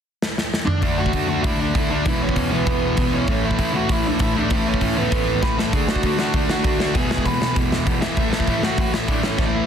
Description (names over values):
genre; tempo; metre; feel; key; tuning
punk rock; 196 BPM; 4/4; straight; unclear; A4 = 443 Hz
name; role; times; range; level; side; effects
big rock drum kit; drums; 0.2-9.5 s; hi-hat, kick drum, snare drum, toms; -22 LUFS; equal; none
dark smooth lead guitar; melody; 0.7-9.7 s; B3 to B5; -25 LUFS; right 1 dB; overdrive, ping-pong delay
distorted electric guitar; riff; 0.8-9.7 s; E2 to D4; -24 LUFS; right 11 dB; overdrive
sludgy distorted guitar; riff; 0.8-9.7 s; E2 to D4; -24 LUFS; left 9 dB; overdrive
room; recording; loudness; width
light reverb; dense, heavily limited modern master; -18 LUFS; side -8 dB against mid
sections
0.8-9.7 A section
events
drum fill 0.2-0.8, 5.4-5.7, 9.4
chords
0.0 N.C.; 0.8 D; 2.0 E5; 3.3 A; 5.7 D; 6.9 E; 8.2 A5